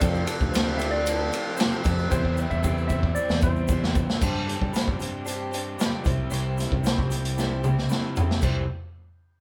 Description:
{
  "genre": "folk rock and heartland rock",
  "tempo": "114 BPM",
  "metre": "4/4",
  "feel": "straight",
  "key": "C major",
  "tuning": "A4 = 440 Hz",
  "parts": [
    { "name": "clean lap steel guitar", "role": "melody", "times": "0.0-3.9 s", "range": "C5 to E5", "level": "-33 LUFS", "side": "equal", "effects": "none" },
    { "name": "picked swing-style acoustic guitar", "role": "accompaniment", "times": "0.0-8.6 s", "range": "C3 to C5", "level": "-37 LUFS", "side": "equal", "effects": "none" },
    { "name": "warm grand piano", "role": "accompaniment", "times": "0.0-8.7 s", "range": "C4 to D5", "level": "-41 LUFS", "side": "equal", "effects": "none" },
    { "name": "clear studio string section", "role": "sustained chords", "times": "0.0-4.2 s", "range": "G3 to G4", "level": "-42 LUFS", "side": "equal", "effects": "none" },
    { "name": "crunchy overdriven guitar", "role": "riff", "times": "0.0-8.6 s", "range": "F2 to G4", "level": "-37 LUFS", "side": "equal", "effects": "none" },
    { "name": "fingered electric bass", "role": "bass", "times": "0.0-8.7 s", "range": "C2 to G3", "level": "-30 LUFS", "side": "equal", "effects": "none" },
    { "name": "vintage drum kit", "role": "drums", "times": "0.0-8.5 s", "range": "crash cymbal, hi-hat, kick drum, ride cymbal, snare drum, toms", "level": "-28 LUFS", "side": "equal", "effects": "none" },
    { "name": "tube shaker", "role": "percussion", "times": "0.0-8.7 s", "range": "none", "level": "-46 LUFS", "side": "equal", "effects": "none" }
  ],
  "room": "moderate studio reverb, RT60 0.5 s",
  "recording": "band playing live in one room",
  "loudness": "-25 LUFS",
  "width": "mono",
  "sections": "0.0-4.2 A section; 4.2-8.4 B section",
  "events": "drum fill 2.1-4.2, 7.4-8.4",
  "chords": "0.0 Fadd9; 2.1 C/E; 4.2 Gsus4; 6.1 C"
}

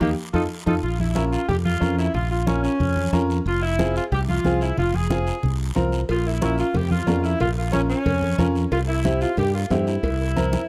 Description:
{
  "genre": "latin, cumbia",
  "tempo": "182 BPM",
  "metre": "4/4",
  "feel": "straight",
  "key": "unclear",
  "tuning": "A4 = 439 Hz",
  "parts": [
    { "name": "bright saxophone section", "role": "melody", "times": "0.0-10.7 s", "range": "Bb3 to A4", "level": "-28 LUFS", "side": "equal", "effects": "none" },
    { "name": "bright upright piano", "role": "accompaniment", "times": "0.0-10.6 s", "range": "Bb3 to Bb4", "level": "-28 LUFS", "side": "equal", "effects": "none" },
    { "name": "modern bright fingered electric bass", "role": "bass", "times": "0.0-10.6 s", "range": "F1 to G2", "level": "-26 LUFS", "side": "equal", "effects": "none" },
    { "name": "congas", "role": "percussion", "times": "0.0-10.6 s", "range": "none", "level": "-29 LUFS", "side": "equal", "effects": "none" },
    { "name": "guiro", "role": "percussion", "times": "0.0-10.7 s", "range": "none", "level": "-42 LUFS", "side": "equal", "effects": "none" },
    { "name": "cowbell and timbales", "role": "percussion", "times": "6.1-10.2 s", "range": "none", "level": "-33 LUFS", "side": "equal", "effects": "none" }
  ],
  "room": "studio reverb",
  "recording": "dry, close 1970s-style studio recording",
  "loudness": "-22 LUFS",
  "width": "mono",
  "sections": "0.8-10.7 A section",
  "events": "band accent 0.0-0.8; drum fill 10.4-10.7",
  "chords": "0.2 F7; 0.8 Bbm; 3.5 Fm; 6.1 Bbm; 8.7 C"
}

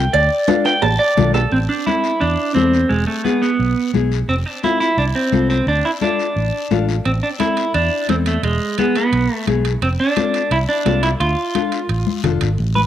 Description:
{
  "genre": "latin, cumbia",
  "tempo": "174 BPM",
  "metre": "4/4",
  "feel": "straight",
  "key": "A harmonic minor",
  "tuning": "A4 = 439 Hz",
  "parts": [
    { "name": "clean electric guitar", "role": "melody", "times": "0.0-12.8 s", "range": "G#3 to A5", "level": "-18 LUFS", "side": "right 2 dB", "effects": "none" },
    { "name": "nylon-string guitar", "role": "accompaniment", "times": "0.0-12.5 s", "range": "B3 to A4", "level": "-22 LUFS", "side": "left 9 dB", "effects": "cassette tape" },
    { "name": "fingered electric bass", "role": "bass", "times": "0.0-12.9 s", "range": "E1 to E2", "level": "-19 LUFS", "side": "right 1 dB", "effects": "none" },
    { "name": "congas", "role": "percussion", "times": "0.1-12.9 s", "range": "none", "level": "-23 LUFS", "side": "left 7 dB", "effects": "none" },
    { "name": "cowbell and timbales", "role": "percussion", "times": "0.1-1.4, 7.1-12.6 s", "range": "none", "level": "-25 LUFS", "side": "right 11 dB", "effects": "none" },
    { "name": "guiro", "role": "percussion", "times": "0.1-12.9 s", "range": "none", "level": "-34 LUFS", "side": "left 10 dB", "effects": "none" }
  ],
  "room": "light reverb, small room reverb",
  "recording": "home recording on cassette",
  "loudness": "-15 LUFS",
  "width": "side -11 dB against mid",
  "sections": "0.0-1.5 A section; 1.5-12.6 B section",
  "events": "clean electric guitar solo 0.0-1.5; drum fill 0.5-1.5, 12.1-12.6",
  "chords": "0.1 Dm; 1.5 Am; 2.9 E; 4.3 F; 5.7 Dm; 7.1 Am; 8.4 E; 9.8 F; 11.2 Dm"
}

